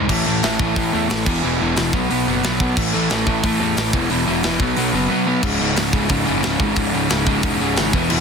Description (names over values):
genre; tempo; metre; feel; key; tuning
punk rock; 180 BPM; 4/4; straight; C# minor; A4 = 442 Hz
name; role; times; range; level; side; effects
overdriven electric guitar; riff; 0.0-8.2 s; C#2 to B3; -21 LUFS; left 13 dB; none
overdriven electric guitar; riff; 0.0-8.2 s; C#2 to B3; -21 LUFS; right 14 dB; none
fuzz picked electric bass; bass; 0.0-8.2 s; C#1 to A2; -25 LUFS; equal; overdrive
tight metal drum kit; drums; 0.1-8.2 s; crash cymbal, hi-hat, kick drum, snare drum; -22 LUFS; equal; soft clipping on kick
room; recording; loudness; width
little or no reverb; dense, heavily limited modern master; -16 LUFS; side -6 dB against mid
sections
0.1-5.4 A section; 5.4-8.2 B section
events
none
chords
0.1 A5; 1.3 E5; 1.9 B5; 2.8 A5; 3.9 E5; 4.6 B5; 5.4 C#5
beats
| 0.10 0.43 0.76 1.10 | 1.43 1.76 2.10 2.43 | 2.77 3.10 3.44 3.77 | 4.10 4.44 4.77 5.10 | 5.44 5.77 6.11 6.44 | 6.77 7.10 7.44 7.77 | 8.10